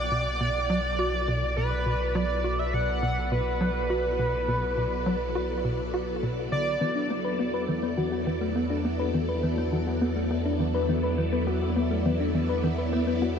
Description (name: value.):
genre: ambient, sequencer-driven space music.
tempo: 103 BPM.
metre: 4/4.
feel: straight.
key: B minor.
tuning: A4 = 439 Hz.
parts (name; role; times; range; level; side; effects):
pulse-width lead; melody; 0.0-7.1 s; B4 to F#5; -29 LUFS; equal; chorus, ping-pong delay.
phased string machine; sustained chords; 0.0-13.4 s; F#3 to D5; -32 LUFS; equal; ensemble chorus, phaser.
warm sub bass; bass; 0.0-13.4 s; B1 to E2; -31 LUFS; equal; none.
tight sequencer bass; riff; 0.1-13.4 s; B2 to F#4; -31 LUFS; equal; analog chorus, ping-pong delay.
thumb-piano-like synth pluck; arpeggios; 6.8-13.4 s; A3 to B4; -29 LUFS; left 4 dB; chorus, auto-pan, ping-pong delay.
room: wet huge ambient reverb, RT60 8.2 s.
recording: dreamy mix soaked in reverb.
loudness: -24 LUFS.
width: side -7 dB against mid.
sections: 0.0-13.4 A section.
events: fade-in on string machine 0.0-13.4.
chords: 0.0 Bm7; 6.8 E7(no3).